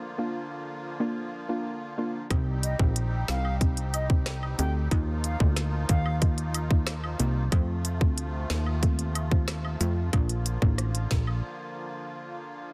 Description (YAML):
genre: dancehall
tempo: 92 BPM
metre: 4/4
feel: straight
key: Bb major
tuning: A4 = 439 Hz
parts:
  - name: musette accordion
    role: sustained chords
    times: 0.0-12.7 s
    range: C3 to G4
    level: -41 LUFS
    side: equal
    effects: sidechain pumping
  - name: soft round pluck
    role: accompaniment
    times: 0.2-10.8 s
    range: A3 to G4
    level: -37 LUFS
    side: equal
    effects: chorus
  - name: plucky analog bass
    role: bass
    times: 2.3-11.4 s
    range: A1 to F2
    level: -30 LUFS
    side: equal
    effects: none
  - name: island pop drum kit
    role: drums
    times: 2.3-11.3 s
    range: hi-hat, kick drum, rim click, snare drum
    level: -28 LUFS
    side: equal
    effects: none
  - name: woodblock and cabasa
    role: percussion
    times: 2.3-11.4 s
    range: none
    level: -43 LUFS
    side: equal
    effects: none
  - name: bright reedy baroque flute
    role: melody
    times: 2.6-6.2 s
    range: Eb5 to G5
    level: -39 LUFS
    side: equal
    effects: delay
room: little or no reverb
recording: dense, heavily limited modern master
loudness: -28 LUFS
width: mono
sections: 0.0-12.7 A section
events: break 11.4-12.7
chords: 0.0 Bb; 2.3 Cm; 4.9 Ebsus2; 7.5 F; 10.1 Bb